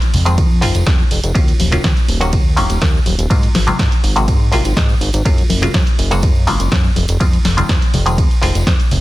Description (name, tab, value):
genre	filtered disco house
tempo	123 BPM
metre	4/4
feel	straight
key	unclear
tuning	A4 = 435 Hz
part	punchy analog drum machine	drums	0.0-9.0 s	hi-hat, ride cymbal, snare drum	-21 LUFS	right 1 dB	sidechain pumping on cymbals, sidechain pumping on hats
part	tambourine and congas	percussion	0.0-9.0 s	none	-24 LUFS	left 2 dB	sidechain pumping on perc
part	fat analog bass	bass	0.1-9.0 s	Eb1 to Ab2	-17 LUFS	equal	sidechain pumping
part	muted clav	accompaniment	0.3-9.0 s	C3 to Ab4	-21 LUFS	left 1 dB	phaser, sidechain pumping
part	electronic kick drum	drums	0.4-8.8 s	none	-15 LUFS	equal	none
room	little or no reverb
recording	dense, heavily limited modern master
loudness	-12 LUFS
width	side -17 dB against mid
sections	0.0-9.0 A section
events	none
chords	0.0 Fm7; 1.4 Ebm9; 3.3 Ab13; 5.3 Gbmaj9; 7.0 Fm7